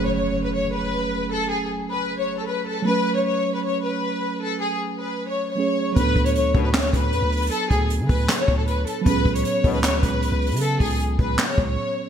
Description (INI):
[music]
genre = hip hop, trap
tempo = 155 BPM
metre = 4/4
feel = half-time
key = F# minor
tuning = A4 = 439 Hz
[part]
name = warm studio violin section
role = melody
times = 0.0-12.1 s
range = G#4 to C#5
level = -24 LUFS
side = left 2 dB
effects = none
[part]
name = muted felt-like synth keys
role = accompaniment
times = 0.0-12.1 s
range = F#3 to B4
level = -27 LUFS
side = right 5 dB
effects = chorus
[part]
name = impact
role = sound effects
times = 0.0-1.3 s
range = none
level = -32 LUFS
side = equal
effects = none
[part]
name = long sustained 808-style bass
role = bass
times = 6.0-11.8 s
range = C#2 to D3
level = -23 LUFS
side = equal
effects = none
[part]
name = jazz brush drum kit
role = drums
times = 6.0-11.7 s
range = handclaps, hi-hat, kick drum, snare drum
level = -23 LUFS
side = equal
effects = gated reverb
[part]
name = mellow brass ensemble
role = stabs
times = 6.5-6.7, 9.6-9.8 s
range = D2 to B2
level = -32 LUFS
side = left 7 dB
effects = none
[sound]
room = moderate plate reverb, RT60 1.6 s, small room ambience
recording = bright 1980s-style digital production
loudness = -20 LUFS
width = side -8 dB against mid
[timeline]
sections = 0.0-12.1 A section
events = impact 0.0-1.3; break 11.8-12.1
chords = 0.0 F#madd9; 6.0 D6; 9.1 C#7sus4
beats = 0.16 0.55 0.93 | 1.32 1.71 2.09 2.48 | 2.87 3.25 3.64 4.03 | 4.42 4.80 5.19 5.58 | 5.96 6.35 6.74 7.13 | 7.51 7.90 8.29 8.67 | 9.06 9.45 9.84 10.22 | 10.61 11.00 11.38 11.77